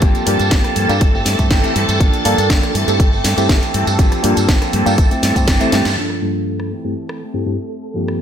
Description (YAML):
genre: filtered disco house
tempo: 121 BPM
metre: 4/4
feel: straight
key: unclear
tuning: A4 = 439 Hz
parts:
  - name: reed electric piano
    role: accompaniment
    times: 0.0-8.2 s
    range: G2 to A4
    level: -20 LUFS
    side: equal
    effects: phaser, vintage 12-bit sampler grit, sidechain pumping, low-pass filter
  - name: phased string machine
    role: sustained chords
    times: 0.0-8.2 s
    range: A4 to A5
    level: -23 LUFS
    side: equal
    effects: ensemble chorus, phaser, vintage 12-bit sampler grit, sidechain pumping, low-pass filter
  - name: electric guitar with an envelope filter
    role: riff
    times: 0.0-8.2 s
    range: E3 to G4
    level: -22 LUFS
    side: right 1 dB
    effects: sidechain pumping, low-pass filter
  - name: deep dub fingered electric bass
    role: bass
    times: 0.0-6.0 s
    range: G1 to G2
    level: -20 LUFS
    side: equal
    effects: sidechain pumping, low-pass filter
  - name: electronic kick drum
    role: drums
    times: 0.0-5.6 s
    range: none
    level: -14 LUFS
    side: equal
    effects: studio reverb
  - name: house drum kit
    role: drums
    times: 0.0-8.2 s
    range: hi-hat, rim click, snare drum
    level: -21 LUFS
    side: equal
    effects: sidechain pumping on hats, studio reverb
  - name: tambourine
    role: percussion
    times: 0.0-6.0 s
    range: none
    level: -30 LUFS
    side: right 6 dB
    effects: sidechain pumping on perc, low-pass filter on perc
room: light reverb, digital ambience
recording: none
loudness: -13 LUFS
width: side -9 dB against mid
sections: 0.0-6.0 A section; 6.0-8.2 B section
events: drum fill 5.7; band accent 5.8; filter sweep 6.0-8.2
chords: 0.0 C7sus4/G; 1.0 Am7/G; 2.0 Gm7; 2.8 Am7/G; 4.0 C7sus4/G; 5.0 Am7/G; 6.0 Gm7; 6.7 Am7/G